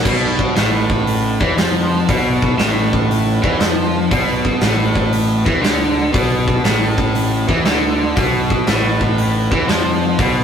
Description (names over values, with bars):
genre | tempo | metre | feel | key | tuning
blues rock power trio and southern rock | 118 BPM | 4/4 | swing 66% on 8ths | B mixolydian | A4 = 440 Hz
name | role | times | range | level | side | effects
mellow tonewheel organ | sustained chords | 0.0-10.4 s | D#4 to F#5 | -28 LUFS | right 3 dB | slow rotary speaker
raw garage guitar | riff | 0.0-10.4 s | A2 to E#3 | -17 LUFS | equal | overdrive, spring reverb
fuzz fingered electric bass | bass | 0.0-10.4 s | A1 to E#2 | -21 LUFS | equal | overdrive
big rock drum kit | drums | 0.1-10.3 s | crash cymbal, hi-hat, kick drum, snare drum | -18 LUFS | equal | none
room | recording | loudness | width
moderate small room reverb, RT60 0.5 s | rough rehearsal-room recording, tube saturation | -14 LUFS | side -8 dB against mid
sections
0.1-10.4 A section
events
none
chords
0.1 B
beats
| 0.05 0.56 1.07 1.58 | 2.08 2.59 3.10 3.61 | 4.12 4.62 5.13 5.64 | 6.14 6.65 7.16 7.66 | 8.17 8.67 9.18 9.69 | 10.19